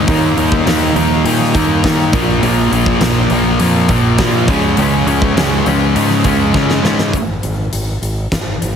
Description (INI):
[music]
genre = quiet-loud alternative rock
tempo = 102 BPM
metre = 4/4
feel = straight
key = unclear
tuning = A4 = 442 Hz
[part]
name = fuzz guitar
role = riff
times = 0.0-6.8 s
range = Bb2 to Eb4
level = -20 LUFS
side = equal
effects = none
[part]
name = thick fuzz guitar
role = riff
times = 0.0-7.1 s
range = Bb2 to Eb4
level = -16 LUFS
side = left 10 dB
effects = distortion
[part]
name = thick fuzz guitar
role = riff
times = 0.0-7.1 s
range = Bb2 to Eb4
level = -17 LUFS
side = right 11 dB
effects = distortion
[part]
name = growling fingered electric bass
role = bass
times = 0.0-8.8 s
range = Ab1 to Eb3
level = -18 LUFS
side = equal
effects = overdrive
[part]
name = huge arena drum kit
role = drums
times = 0.1-8.8 s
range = hi-hat, kick drum, snare drum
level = -18 LUFS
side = left 1 dB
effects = none
[sound]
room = light reverb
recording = heavily compressed radio sound, multiband compression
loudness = -11 LUFS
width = side -7 dB against mid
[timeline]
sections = 0.0-7.1 A section; 7.1-8.8 B section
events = drum fill 6.5-7.1; half time 7.1-8.8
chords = 0.1 Eb; 2.1 Bb; 4.5 Db; 7.1 N.C.